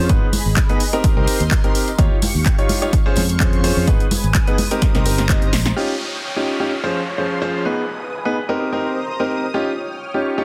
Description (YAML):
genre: piano house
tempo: 127 BPM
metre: 4/4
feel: swing 54% on 16ths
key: Eb mixolydian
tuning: A4 = 440 Hz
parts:
  - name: analog string pad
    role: sustained chords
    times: 0.0-10.4 s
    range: F4 to F6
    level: -32 LUFS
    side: equal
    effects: ensemble chorus, phaser, sidechain pumping
  - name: clear concert grand piano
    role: riff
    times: 0.0-10.4 s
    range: F3 to Eb5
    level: -24 LUFS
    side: equal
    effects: sidechain pumping
  - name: fingered electric bass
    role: bass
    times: 0.0-5.7 s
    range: G1 to F2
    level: -22 LUFS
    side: equal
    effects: sidechain pumping
  - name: electronic kick drum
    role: drums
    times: 0.1-5.4 s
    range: none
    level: -20 LUFS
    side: equal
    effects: none
  - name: house drum kit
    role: drums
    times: 0.1-5.9 s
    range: crash cymbal, handclaps, hi-hat, snare drum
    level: -26 LUFS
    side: equal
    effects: low-pass filter on hats, low-pass filter on snare, low-pass filter on cymbals
  - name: tambourine and congas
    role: percussion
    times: 0.1-5.7 s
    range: none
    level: -30 LUFS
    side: equal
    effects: none
  - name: downlifter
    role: sound effects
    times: 5.8-9.5 s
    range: none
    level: -32 LUFS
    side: equal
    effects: none
room: light reverb, digital ambience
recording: dense, heavily limited modern master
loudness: -18 LUFS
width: mono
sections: 0.0-5.8 A section; 5.8-10.4 B section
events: drum fill 4.8-5.8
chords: 0.1 Abm; 0.8 Cm7; 2.0 Eb9; 2.9 Dbmaj7/F; 3.9 Abm; 4.6 Cm7; 5.8 Eb9; 6.7 Dbmaj7/F; 7.7 Abm; 8.4 Cm7; 9.5 Eb9